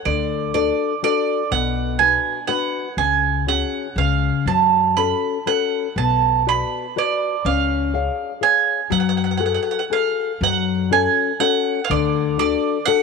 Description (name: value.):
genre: italian folk, Italian serenade.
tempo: 122 BPM.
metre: 3/4.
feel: swing 55% on 8ths, rubato.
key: F# harmonic minor.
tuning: A4 = 443 Hz.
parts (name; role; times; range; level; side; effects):
bowl-back mandolin; melody; 0.1-13.0 s; D5 to B5; -20 LUFS; right 11 dB; none.
nylon-string guitar; accompaniment; 0.1-13.0 s; B2 to E#5; -22 LUFS; left 12 dB; none.
upright bass; bass; 0.1-12.5 s; B1 to F#2; -25 LUFS; equal; none.
room: moderate plate reverb, RT60 3.4 s.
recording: 1960s-style stereo with parts hard left and right.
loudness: -17 LUFS.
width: side -4 dB against mid.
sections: 0.0-10.4 A section; 10.4-13.0 A section.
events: none.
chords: 0.1 D; 1.5 Bm; 3.0 C#sus4; 4.0 C#; 4.5 F#m; 6.0 Bm; 7.4 C#; 8.9 F#madd9; 10.4 F#m; 11.9 D.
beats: | 0.05 0.54 1.03 | 1.51 2.00 2.48 | 2.97 3.47 3.97 | 4.47 4.97 5.47 | 5.97 6.46 6.95 | 7.44 7.92 8.40 | 8.89 9.39 9.90 | 10.41 10.91 11.40 | 11.89 12.38 12.87.